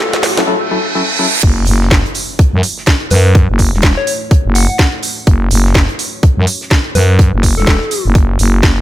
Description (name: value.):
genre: bass house.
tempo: 125 BPM.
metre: 4/4.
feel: swing 60% on 16ths.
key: F# minor.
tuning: A4 = 439 Hz.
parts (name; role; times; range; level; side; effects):
soft struck synth lead; melody; 0.0-8.1 s; A4 to F#5; -21 LUFS; left 2 dB; chorus, tape echo.
dark analog pad; sustained chords; 0.0-8.8 s; A3 to C#5; -32 LUFS; left 1 dB; none.
growling FM bass; bass; 0.0-8.8 s; E1 to F#2; -11 LUFS; equal; tube saturation, sidechain pumping, high-pass filter.
riser, reverse cymbal and impact; sound effects; 0.0-3.4 s; none; -18 LUFS; right 2 dB; none.
warbly tape-like pad; texture; 0.0-0.5 s; C#4 to A5; -30 LUFS; left 4 dB; none.
garage drum kit; drums; 0.1-8.7 s; crash cymbal, hi-hat, snare drum; -16 LUFS; right 1 dB; none.
percussive organ stab; stabs; 0.4-1.3 s; F#3 to A4; -18 LUFS; left 3 dB; wide subtle chorus, sidechain pumping, tape echo.
damped 70s drum kit; drums; 1.4-8.8 s; hi-hat, snare drum; -27 LUFS; right 7 dB; sidechain pumping on hats, high-pass filter on hats, high-pass filter on snare, high-pass filter on room.
electronic kick drum; drums; 1.4-8.7 s; none; -10 LUFS; equal; high-pass filter on kick, high-pass filter on room.
room: digital ambience.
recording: none.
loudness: -9 LUFS.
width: side -14 dB against mid.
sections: 0.0-1.4 A section; 1.4-8.8 B section.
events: build-up 0.0-1.4; drum fill 0.0-0.5; riser 0.0-0.5; reverse cymbal 0.5-1.4; drop 1.4-8.8; impact 1.4-3.4.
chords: 0.0 F#m7.